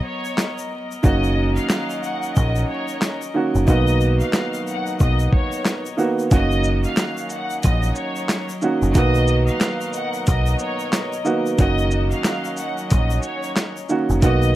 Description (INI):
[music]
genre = hip hop, boom-bap hip-hop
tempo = 91 BPM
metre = 4/4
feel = swing 61% on 16ths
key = F# major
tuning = A4 = 440 Hz
[part]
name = warm chamber string section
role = sustained chords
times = 0.0-14.6 s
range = B2 to D#5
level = -31 LUFS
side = left 3 dB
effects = high-pass filter, low-pass filter
[part]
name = bright studio violin section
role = melody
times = 0.1-14.6 s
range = C#5 to F#5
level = -28 LUFS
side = left 1 dB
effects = high-pass filter, low-pass filter
[part]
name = tube shaker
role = percussion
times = 0.2-14.5 s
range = none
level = -39 LUFS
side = left 6 dB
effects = none
[part]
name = dusty soul sampler-style drum kit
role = drums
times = 0.4-14.4 s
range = handclaps, hi-hat, kick drum, shaker, snare drum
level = -19 LUFS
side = equal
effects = none
[part]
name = dark upright piano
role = accompaniment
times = 1.0-14.6 s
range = D#3 to F#4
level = -22 LUFS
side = right 3 dB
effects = high-pass filter, low-pass filter
[part]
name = deep dub picked electric bass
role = bass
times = 1.0-14.6 s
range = F#1 to B1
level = -19 LUFS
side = equal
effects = none
[sound]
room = small room ambience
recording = vinyl crackle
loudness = -18 LUFS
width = side -14 dB against mid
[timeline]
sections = 0.0-14.6 A section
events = break 0.0-6.3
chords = 0.0 Bmaj7; 1.0 F#6; 3.7 Bmaj7; 6.3 F#6; 8.9 Bmaj7; 11.6 F#6